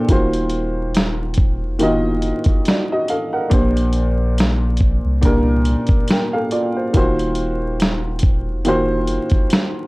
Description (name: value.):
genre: lo-fi hip hop.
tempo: 70 BPM.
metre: 4/4.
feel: swing 56% on 16ths.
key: unclear.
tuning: A4 = 445 Hz.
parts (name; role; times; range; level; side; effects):
dark upright piano; accompaniment; 0.0-9.9 s; Bb2 to A5; -19 LUFS; equal; cassette tape.
soft dub sub bass; bass; 0.1-9.2 s; Eb1 to C2; -21 LUFS; equal; none.
dusty soul sampler-style drum kit; drums; 0.1-9.7 s; hi-hat, kick drum, snare drum; -17 LUFS; equal; none.
room: little or no reverb.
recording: dry, gritty hardware recording, vinyl crackle.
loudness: -15 LUFS.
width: side -22 dB against mid.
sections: 0.1-9.9 A section.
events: none.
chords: 0.1 Ebm6; 3.5 Bb69; 6.9 Ebm6.